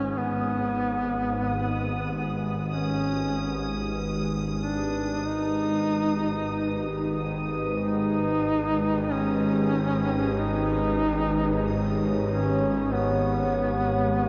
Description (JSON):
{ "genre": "dark ambient drone", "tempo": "47 BPM", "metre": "4/4", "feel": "straight", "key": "unclear", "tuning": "A4 = 438 Hz", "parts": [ { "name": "warm duduk", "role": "melody", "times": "0.0-14.3 s", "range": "B3 to D#4", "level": "-30 LUFS", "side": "equal", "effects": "shimmer reverb, diffuse ambient delay" }, { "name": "dark analog pad", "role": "sustained chords", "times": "2.1-14.3 s", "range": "G#3 to C#5", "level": "-33 LUFS", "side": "equal", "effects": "chorus, phaser, shimmer reverb" }, { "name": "bowed-like drone", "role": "drone", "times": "0.0-14.3 s", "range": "G#1 to G#2", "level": "-30 LUFS", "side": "equal", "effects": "built-in reverb" }, { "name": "bubbling stepped-filter texture", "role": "texture", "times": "0.0-14.3 s", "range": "D#6", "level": "-41 LUFS", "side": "equal", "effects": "chorus, built-in reverb, shimmer reverb" } ], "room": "wet huge ambient reverb, RT60 7.4 s", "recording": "dark, warm production, nothing above 7.6 kHz", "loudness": "-26 LUFS", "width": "mono", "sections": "0.0-14.3 A section", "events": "fade-in on analog synth pad 0.0-14.3; fade-out on synth texture 0.0-14.3", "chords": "0.0 G#m", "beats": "0.16 1.44 | 2.71 3.99 5.27 6.54 | 7.82 9.10 10.38 11.65 | 12.93 14.21" }